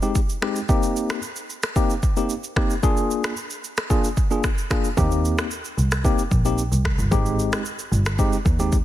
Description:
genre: afrobeats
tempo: 112 BPM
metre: 4/4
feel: straight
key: Eb major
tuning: A4 = 440 Hz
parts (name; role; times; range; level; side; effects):
- tine electric piano; accompaniment; 0.0-8.8 s; Ab3 to Ab4; -24 LUFS; left 2 dB; medium stereo tremolo
- afro-pop drum kit; drums; 0.0-8.8 s; finger snaps, kick drum, rim click, shaker; -23 LUFS; equal; soft clipping on snare
- warm double bass; bass; 5.0-8.8 s; G1 to Eb2; -22 LUFS; equal; none
room: little or no reverb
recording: dense, heavily limited modern master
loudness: -20 LUFS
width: side -13 dB against mid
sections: 0.0-8.8 A section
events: none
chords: 0.0 Abmaj7; 0.7 Cm7; 2.8 Bb7; 5.0 Eb6; 7.1 Abmaj7

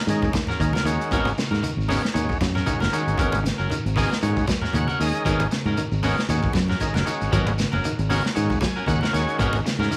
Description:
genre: afrobeat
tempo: 116 BPM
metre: 4/4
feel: swing 56% on 16ths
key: G# minor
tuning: A4 = 440 Hz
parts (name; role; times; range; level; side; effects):
- overdriven tonewheel organ; accompaniment; 0.1-9.6 s; D#3 to G#5; -31 LUFS; equal; none
- electric guitar at the edge of break-up; arpeggios; 0.1-10.0 s; C#3 to F#3; -33 LUFS; equal; harmonic tremolo
- fingered electric bass; bass; 0.1-9.9 s; F#1 to G#2; -27 LUFS; equal; none
- crunchy breakbeat drum kit; drums; 0.1-10.0 s; hi-hat, kick drum, snare drum; -30 LUFS; equal; none
- shekere; percussion; 0.1-10.0 s; none; -37 LUFS; equal; none
- congas; percussion; 0.2-9.9 s; none; -33 LUFS; equal; none
- electric guitar at the edge of break-up; stabs; 0.5-9.9 s; B3 to A#4; -31 LUFS; equal; none
room: moderate echo chamber reverb, RT60 1.6 s, studio reverb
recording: none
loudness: -23 LUFS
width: mono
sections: 0.0-10.0 A section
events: tonewheel organ fill 4.5-5.3, 8.4-9.4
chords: 0.0 G#m11

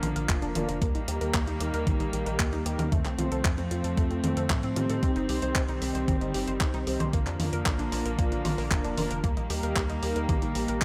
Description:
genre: italo disco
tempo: 114 BPM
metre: 4/4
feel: straight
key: unclear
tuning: A4 = 441 Hz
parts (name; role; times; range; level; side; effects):
- rich chamber string section; sustained chords; 0.0-10.8 s; D3 to C4; -35 LUFS; equal; none
- analog pluck; arpeggios; 0.0-10.8 s; A3 to C5; -40 LUFS; equal; chorus, cassette tape, tape echo
- mellow synth brass; stabs; 0.0-10.8 s; Bb3 to C5; -37 LUFS; equal; chorus, tape echo
- tight sequencer bass; bass; 0.0-10.8 s; F1 to A2; -35 LUFS; equal; tube saturation
- clean 12-bit digital drum machine; drums; 0.0-10.8 s; handclaps, hi-hat, toms; -35 LUFS; equal; none
- electronic kick drum; drums; 0.3-10.8 s; none; -30 LUFS; equal; none
room: light reverb, digital ambience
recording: dry, gritty hardware recording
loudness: -28 LUFS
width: mono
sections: 0.0-10.8 A section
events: none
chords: 0.0 Bb; 0.8 Eb; 2.9 F; 5.0 Cm; 7.1 Bb; 9.2 Eb

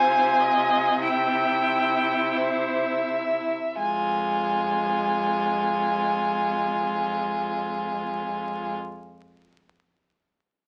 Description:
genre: classical, slow romantic movement for string quartet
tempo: free time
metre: none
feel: none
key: F minor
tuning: A4 = 440 Hz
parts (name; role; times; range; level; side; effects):
- rich violin; melody; 0.0-8.7 s; E5 to Ab5; -27 LUFS; equal; none
- rich violin; second line; 0.0-8.7 s; E4 to F4; -32 LUFS; equal; none
- clear viola; accompaniment; 0.0-8.7 s; Ab3 to E5; -32 LUFS; equal; none
- rich cello; bass; 0.0-8.7 s; F2 to C3; -35 LUFS; equal; none
room: wet studio reverb, RT60 0.6 s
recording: very old 78 rpm record, vinyl crackle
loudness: -25 LUFS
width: mono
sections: 0.0-3.8 A section; 3.8-9.3 B section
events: slowing down 0.0-3.8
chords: 0.0 Fm/C; 1.0 C; 3.8 Fm

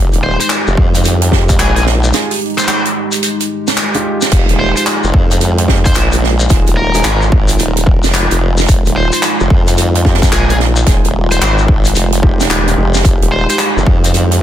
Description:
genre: glitch hop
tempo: 110 BPM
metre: 4/4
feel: swing 63% on 16ths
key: F minor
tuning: A4 = 440 Hz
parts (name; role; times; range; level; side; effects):
- dark analog pad; sustained chords; 0.0-14.4 s; Ab3 to G4; -20 LUFS; right 1 dB; chorus, sidechain pumping
- formant-sweep wobble bass; bass; 0.0-14.4 s; Eb1 to F2; -14 LUFS; equal; chorus, tube saturation
- natural country drum kit; drums; 0.1-14.4 s; crash cymbal, handclaps, hi-hat, snare drum; -17 LUFS; right 2 dB; none
- shekere; percussion; 0.1-14.4 s; none; -22 LUFS; left 5 dB; none
- high-gain lead guitar; melody; 0.2-13.6 s; Ab4 to C5; -20 LUFS; equal; distortion, tape echo
- electronic kick drum; drums; 0.8-14.0 s; none; -12 LUFS; equal; overdrive
- warm grand piano; stabs; 1.3-14.4 s; Ab3 to Ab4; -21 LUFS; equal; vintage 12-bit sampler grit, sidechain pumping, tape echo
room: light reverb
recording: dense, heavily limited modern master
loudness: -9 LUFS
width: side -11 dB against mid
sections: 0.0-14.4 A section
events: break 2.1-4.3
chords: 0.0 Fm9

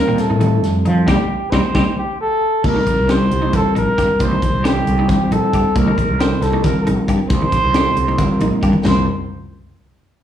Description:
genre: electric jazz fusion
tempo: 270 BPM (eighths)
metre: 7/8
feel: straight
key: C dorian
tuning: A4 = 440 Hz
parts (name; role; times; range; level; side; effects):
- breathy trumpet; melody; 0.0-9.1 s; G4 to C5; -19 LUFS; equal; slapback echo
- mellow trombone; second line; 0.0-1.8 s; G3 to Bb3; -23 LUFS; right 1 dB; slapback echo
- overdriven reed electric piano; accompaniment; 0.0-9.1 s; G3 to C5; -21 LUFS; right 2 dB; fast tremolo, slapback echo
- semi-hollow electric guitar; stabs; 0.1-9.0 s; C4 to G4; -27 LUFS; right 1 dB; ensemble chorus, slapback echo
- fretless electric bass; bass; 0.1-9.1 s; Bb1 to F3; -18 LUFS; equal; none
- tight funk drum kit; drums; 0.2-9.0 s; crash cymbal, hi-hat, kick drum, snare drum, splash cymbal, toms; -21 LUFS; left 1 dB; none
- congas; percussion; 0.3-9.1 s; none; -24 LUFS; left 1 dB; slapback echo
room: light reverb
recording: live gig heard through the venue's PA, club reverb, studio reverb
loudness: -14 LUFS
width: side -10 dB against mid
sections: 0.0-2.6 A section; 2.6-8.9 B section; 8.9-10.2 C section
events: band accent 1.1-2.6; drum fill 8.4-8.9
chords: 0.0 F9sus4; 1.1 Cm6; 2.6 Cm7; 8.9 C5

